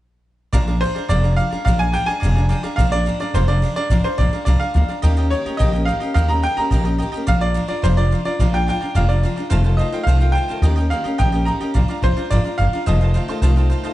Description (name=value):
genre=rockabilly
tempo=214 BPM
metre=4/4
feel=straight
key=Bb mixolydian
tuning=A4 = 440 Hz
part: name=picked steel-string acoustic guitar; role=accompaniment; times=0.5-13.9 s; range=F2 to Ab4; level=-25 LUFS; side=left 2 dB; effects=none
part: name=tack piano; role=accompaniment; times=0.5-13.9 s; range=C5 to C6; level=-30 LUFS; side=right 4 dB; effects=none
part: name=upright bass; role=bass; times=0.5-13.9 s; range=F1 to Eb2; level=-16 LUFS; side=equal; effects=none
part: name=bright upright piano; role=melody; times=0.8-13.7 s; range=C5 to Bb5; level=-23 LUFS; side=right 1 dB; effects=analog delay
room=small room reverb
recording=nothing above 10.5 kHz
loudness=-16 LUFS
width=side -15 dB against mid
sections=0.5-13.9 A section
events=honky-tonk piano fill 2.4-2.8, 13.1-13.9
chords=0.5 Bb7; 5.0 Eb7; 7.3 Bb7; 9.5 F7; 10.6 Eb7; 11.7 Bb7; 12.9 F7